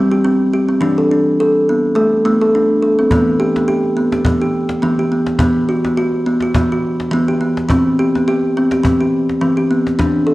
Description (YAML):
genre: world meditative, meditative tuned percussion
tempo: 105 BPM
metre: 4/4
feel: swing 55% on 16ths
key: E minor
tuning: A4 = 440 Hz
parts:
  - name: kalimba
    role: arpeggios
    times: 0.0-10.3 s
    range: E3 to A4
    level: -13 LUFS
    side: equal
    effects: none
  - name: cajon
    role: percussion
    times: 3.1-10.1 s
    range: none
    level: -20 LUFS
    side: left 1 dB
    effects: none
room: wet echo chamber reverb, RT60 1.3 s, small room reverb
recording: worn, warbling old tape, cassette tape, warbly pitch drift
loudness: -13 LUFS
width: side -18 dB against mid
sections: 0.0-3.1 A section; 3.1-10.3 B section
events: none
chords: 0.0 C5; 0.8 D5/E; 3.1 Em; 5.4 B5/E; 7.7 C/E